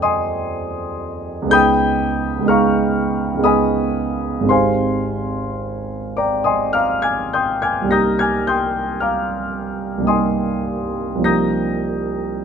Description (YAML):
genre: classical, impressionist solo piano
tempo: 49-64 BPM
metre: 3/4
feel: rubato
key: unclear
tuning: A4 = 440 Hz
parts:
  - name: warm grand piano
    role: solo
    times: 0.0-12.4 s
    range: Ab1 to Bb6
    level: -16 LUFS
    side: equal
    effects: none
room: light reverb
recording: close, detailed microphones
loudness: -16 LUFS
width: side -7 dB against mid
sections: 0.0-12.4 A section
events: none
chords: 0.0 Fm9; 1.5 Db9; 4.5 Abmaj7; 7.9 Cm7; 11.3 Ebadd9/C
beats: 0.55 | 1.53 2.50 3.45 | 4.50 5.62 6.75 | 7.93 9.04 10.10 | 11.27 12.33